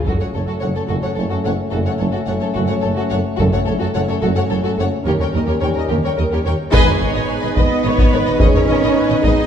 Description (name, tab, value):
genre	cinematic, epic orchestral film score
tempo	72 BPM (dotted quarters)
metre	6/8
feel	straight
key	F# dorian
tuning	A4 = 441 Hz
part	rich symphonic viola section	accompaniment	0.0-9.5 s	G#4 to D#5	-25 LUFS	right 1 dB	none
part	warm symphonic violin section	melody	0.1-9.5 s	A4 to G#5	-28 LUFS	left 4 dB	none
part	warm symphonic violin section	second line	0.1-9.3 s	F#4 to D#5	-25 LUFS	left 3 dB	none
part	warm French horn section	sustained chords	0.1-9.5 s	G3 to D#4	-22 LUFS	left 1 dB	none
part	clear tuba	bass	0.1-9.3 s	F#1 to D#2	-25 LUFS	right 2 dB	none
part	rich symphonic cello section	bass	0.1-9.5 s	D#2 to G#4	-23 LUFS	right 2 dB	none
part	warm studio double bass section	bass	0.1-9.3 s	F#1 to D#2	-23 LUFS	right 2 dB	none
part	taiko ensemble	drums	0.1-9.5 s	none	-18 LUFS	equal	none
part	impact	sound effects	7.0-8.4 s	none	-32 LUFS	left 1 dB	none
room	wet recital hall reverb, RT60 1.6 s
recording	heard from further back in the room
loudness	-15 LUFS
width	side -8 dB against mid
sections	0.1-6.7 A section; 6.7-9.5 B section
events	band accent 6.7-7.3; impact 6.7-8.4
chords	0.1 F#m; 5.1 D#7; 6.7 G#m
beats	| 0.06 0.89 | 1.73 2.56 | 3.39 4.22 | 5.06 5.89 | 6.72 7.56 | 8.39 9.22